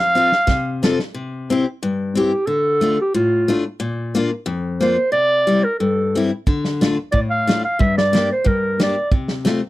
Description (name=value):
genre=alpine folk, alpine dance band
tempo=90 BPM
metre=2/4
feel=straight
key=unclear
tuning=A4 = 440 Hz
part: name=mellow clarinet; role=melody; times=0.0-9.1 s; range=F4 to F5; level=-17 LUFS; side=right 1 dB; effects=none
part: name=picked steel-string acoustic guitar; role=accompaniment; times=0.0-9.6 s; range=F2 to A4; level=-20 LUFS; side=left 3 dB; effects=none
part: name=loose indie drum kit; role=drums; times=0.2-1.1, 6.5-9.6 s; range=hi-hat, kick drum, snare drum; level=-19 LUFS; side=right 1 dB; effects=none
room=little or no reverb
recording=dry, close 1970s-style studio recording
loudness=-16 LUFS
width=side -16 dB against mid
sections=0.0-1.1 A section; 1.1-9.7 B section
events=drum fill 0.0-1.1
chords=0.0 F; 1.1 C; 2.5 Dm; 3.8 Bb; 5.1 C; 6.5 Dm; 7.8 Gm; 9.1 F/C